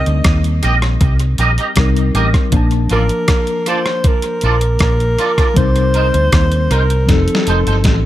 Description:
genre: lovers rock reggae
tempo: 79 BPM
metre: 4/4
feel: straight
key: Bb major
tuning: A4 = 439 Hz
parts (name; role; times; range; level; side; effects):
- breathy alto saxophone; melody; 0.0-8.1 s; A4 to Eb5; -19 LUFS; right 1 dB; tape echo
- mellow tine electric piano; accompaniment; 0.0-8.1 s; F3 to A5; -21 LUFS; left 4 dB; medium stereo tremolo, tape echo
- vintage muted fingered electric bass; bass; 0.0-8.1 s; F1 to Eb2; -15 LUFS; equal; none
- clean 12-bit digital drum machine; drums; 0.1-8.0 s; hi-hat, kick drum, rim click, snare drum; -16 LUFS; equal; tape echo
- twangy electric guitar; stabs; 0.6-7.8 s; Eb4 to Eb5; -21 LUFS; right 3 dB; ensemble chorus, tape echo
room: little or no reverb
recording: none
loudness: -12 LUFS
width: side -14 dB against mid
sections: 0.0-8.1 A section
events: drum fill 7.1-8.1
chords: 0.0 Cm7; 2.5 Bbmaj7; 5.6 Cm7; 7.1 F7

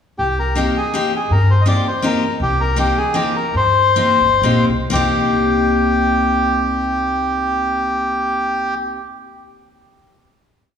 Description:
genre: musette waltz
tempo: 116-163 BPM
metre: 3/4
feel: swing 54% on 8ths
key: C minor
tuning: A4 = 440 Hz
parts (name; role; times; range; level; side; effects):
- bandoneon; melody; 0.2-8.7 s; G4 to Eb5; -17 LUFS; left 1 dB; none
- upright bass; bass; 0.2-9.0 s; G1 to G2; -20 LUFS; equal; none
- picked steel-string acoustic guitar; accompaniment; 0.6-9.0 s; Bb3 to G4; -20 LUFS; left 2 dB; none
room: wet concert hall reverb, RT60 2.2 s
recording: recorded in a church or concert hall, small room ambience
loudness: -14 LUFS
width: side -7 dB against mid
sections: 0.2-4.9 A section; 4.9-8.0 final chord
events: slowing down 2.4-4.9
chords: 0.2 Cm7

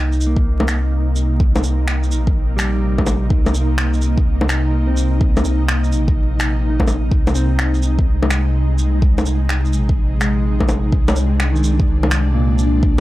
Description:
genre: future garage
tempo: 126 BPM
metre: 4/4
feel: swing 66% on 16ths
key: C minor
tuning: A4 = 439 Hz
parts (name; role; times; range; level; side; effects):
- mellow electric guitar; accompaniment; 0.0-13.0 s; Bb2 to Eb4; -27 LUFS; right 1 dB; vintage 12-bit sampler grit, sidechain pumping, analog delay
- ethereal airy pad; sustained chords; 0.0-13.0 s; C3 to Eb4; -22 LUFS; equal; ensemble chorus, built-in reverb, sidechain pumping
- warm sub bass; bass; 0.0-13.0 s; Bb1 to C2; -18 LUFS; equal; tube saturation, sidechain pumping
- electronic shaker, bongos and finger snaps; drums; 0.1-12.7 s; none; -21 LUFS; left 1 dB; none
- electronic kick drum; drums; 0.4-13.0 s; none; -17 LUFS; equal; none
room: little or no reverb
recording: dry, gritty hardware recording, vinyl crackle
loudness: -14 LUFS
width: side -16 dB against mid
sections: 0.0-13.0 A section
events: none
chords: 0.0 Cm7; 7.1 Ab

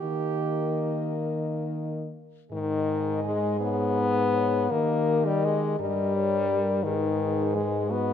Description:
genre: classical, lyrical piece for horn quartet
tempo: 47-58 BPM (dotted quarters)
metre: 6/8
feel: rubato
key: G# minor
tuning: A4 = 439 Hz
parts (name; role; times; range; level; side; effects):
- mellow French horn; melody; 0.0-8.1 s; A#4 to D#5; -35 LUFS; left 8 dB; none
- clear French horn; second line; 0.0-8.1 s; F#4 to A#4; -34 LUFS; right 9 dB; none
- warm French horn; accompaniment; 0.0-8.1 s; D#3 to B3; -26 LUFS; left 4 dB; none
- mellow French horn; bass; 0.0-8.1 s; G2 to D#3; -29 LUFS; right 1 dB; none
room: light reverb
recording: close, detailed microphones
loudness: -24 LUFS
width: side -8 dB against mid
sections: 0.0-2.5 A section; 2.5-8.1 B section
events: none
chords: 0.0 D#; 2.5 G#m; 4.7 D#; 6.8 G#m

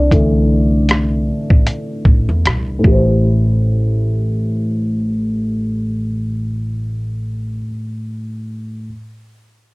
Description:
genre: lo-fi hip hop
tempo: 77 BPM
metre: 4/4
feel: swing 57% on 16ths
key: A minor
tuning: A4 = 440 Hz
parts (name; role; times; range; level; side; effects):
- felt-muted upright piano; accompaniment; 0.0-8.9 s; A2 to D5; -17 LUFS; equal; low-pass filter
- upright bass; bass; 0.0-7.6 s; A1 to E2; -20 LUFS; equal; none
- lo-fi sampler-style drum kit; drums; 0.1-3.0 s; hi-hat, kick drum, rim click; -12 LUFS; equal; vintage 12-bit sampler grit
room: light reverb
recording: none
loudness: -14 LUFS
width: side -24 dB against mid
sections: 0.0-3.2 A section; 3.2-6.3 B section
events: felt piano solo 0.0-3.2; filter sweep on felt piano 0.0-3.2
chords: 0.0 C69; 2.8 Am7

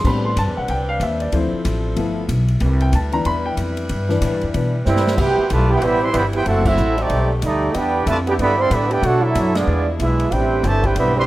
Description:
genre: jazz, big band swing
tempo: 187 BPM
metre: 4/4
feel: swing 62% on 8ths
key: C major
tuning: A4 = 439 Hz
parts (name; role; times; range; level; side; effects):
- warm baby grand piano; accompaniment; 0.0-5.1 s; E3 to C6; -22 LUFS; left 3 dB; none
- clear saxophone section; sustained chords; 0.0-11.3 s; D3 to B4; -28 LUFS; equal; none
- upright bass; bass; 0.0-11.3 s; F#1 to B2; -20 LUFS; equal; none
- swinging big-band drum kit; drums; 0.0-11.1 s; crash cymbal, hi-hat, kick drum, ride cymbal, snare drum; -30 LUFS; equal; none
- clear trumpet section; melody; 4.9-11.2 s; A3 to C6; -22 LUFS; right 1 dB; none
- mellow trombone section; second line; 4.9-11.2 s; B2 to G4; -19 LUFS; right 3 dB; none
room: small room reverb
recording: rough home demo mix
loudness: -16 LUFS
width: side -16 dB against mid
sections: 0.0-5.2 A section; 5.2-11.3 B section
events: grand piano solo 0.0-5.2; drum fill 4.9-5.2; band accent 6.6, 9.5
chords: 0.0 Am11; 1.3 Dm7; 2.0 G13; 2.6 Cmaj7; 6.5 F#m7b5; 7.1 B7alt; 7.7 Em7; 9.0 Bm9; 9.7 E7b9; 10.3 Am11

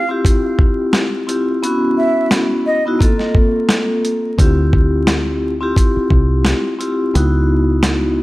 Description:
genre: hip hop, boom-bap hip-hop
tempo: 87 BPM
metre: 4/4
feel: swing 56% on 16ths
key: D minor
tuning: A4 = 440 Hz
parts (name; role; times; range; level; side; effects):
- mellow silver concert flute; melody; 0.0-2.8 s; D#5 to E5; -20 LUFS; right 1 dB; analog delay
- vibraphone with soft mallets; accompaniment; 0.1-8.2 s; Bb3 to A4; -17 LUFS; left 1 dB; cassette tape
- dusty soul sampler-style drum kit; drums; 0.2-8.0 s; hi-hat, kick drum, snare drum; -15 LUFS; equal; overdrive
- deep dub fingered electric bass; bass; 4.4-8.2 s; C2 to D2; -16 LUFS; equal; none
room: light reverb, small room ambience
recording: vinyl crackle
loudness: -13 LUFS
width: side -18 dB against mid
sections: 0.0-8.2 A section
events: break 0.0-4.4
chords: 0.0 Cadd11; 1.6 C#m11; 3.0 Fadd11/Bb; 4.4 Dm11; 7.1 C#m11

